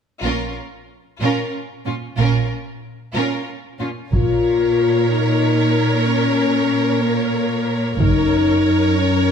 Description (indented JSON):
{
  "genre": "cinematic, epic orchestral film score",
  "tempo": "62 BPM (dotted quarters)",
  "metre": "6/8",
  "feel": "straight",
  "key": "Bb minor",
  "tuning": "A4 = 443 Hz",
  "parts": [
    { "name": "rich symphonic violin section", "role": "melody", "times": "0.2-9.3 s", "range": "F4 to Db5", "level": "-26 LUFS", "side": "left 2 dB", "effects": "none" },
    { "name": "warm symphonic violin section", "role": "second line", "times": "0.2-9.3 s", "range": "Db4 to Bb4", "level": "-28 LUFS", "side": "left 2 dB", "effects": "none" },
    { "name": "rich studio viola section", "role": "accompaniment", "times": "0.2-9.3 s", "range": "Db4 to Bb4", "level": "-26 LUFS", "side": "right 3 dB", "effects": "none" },
    { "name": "rich symphonic cello section", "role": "bass", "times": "0.2-9.3 s", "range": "Gb2 to Bb2", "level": "-22 LUFS", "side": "right 4 dB", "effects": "none" },
    { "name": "rich symphonic double bass section", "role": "bass", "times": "0.2-4.7, 8.0-8.6 s", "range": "Gb1 to Bb1", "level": "-22 LUFS", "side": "right 5 dB", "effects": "none" },
    { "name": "mellow French horn section", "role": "sustained chords", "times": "4.1-9.3 s", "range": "Bb3 to F4", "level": "-18 LUFS", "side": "left 4 dB", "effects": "none" },
    { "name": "taiko ensemble", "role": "drums", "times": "4.1-9.3 s", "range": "none", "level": "-22 LUFS", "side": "equal", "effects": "none" }
  ],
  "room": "moderate scoring stage reverb, RT60 1.5 s",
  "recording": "none",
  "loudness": "-16 LUFS",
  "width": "side -7 dB against mid",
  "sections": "0.2-4.1 A section; 4.1-9.3 B section",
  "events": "none",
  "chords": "0.2 Bbm; 8.0 Gb",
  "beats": "| 0.25 1.22 | 2.18 3.15 | 4.13 5.10 | 6.06 7.02 | 8.00 8.97"
}